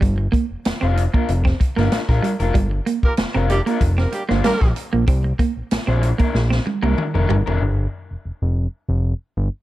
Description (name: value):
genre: funk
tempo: 95 BPM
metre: 4/4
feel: straight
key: G dorian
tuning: A4 = 440 Hz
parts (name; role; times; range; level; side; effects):
- clean electric guitar; riff; 0.0-7.4 s; G3 to C4; -23 LUFS; right 5 dB; none
- fat analog bass; bass; 0.0-9.5 s; F1 to C2; -19 LUFS; equal; none
- swinging big-band drum kit; drums; 0.0-7.6 s; hi-hat, kick drum, snare drum, toms; -21 LUFS; equal; none
- raw garage guitar; accompaniment; 0.8-7.6 s; D4 to C5; -26 LUFS; left 5 dB; overdrive
- warm horn section; second line; 3.0-4.7 s; G3 to Bb4; -25 LUFS; right 2 dB; none
room: little or no reverb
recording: dark, warm production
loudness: -17 LUFS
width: side -15 dB against mid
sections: 0.0-7.6 A section; 7.6-9.6 B section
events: drum fill 6.3-7.6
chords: 0.0 Gm7; 5.1 C9; 7.6 G7(no3)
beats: | 0.02 0.65 1.29 1.92 | 2.55 3.18 3.81 4.45 | 5.08 5.71 6.34 6.98 | 7.61 8.25 8.88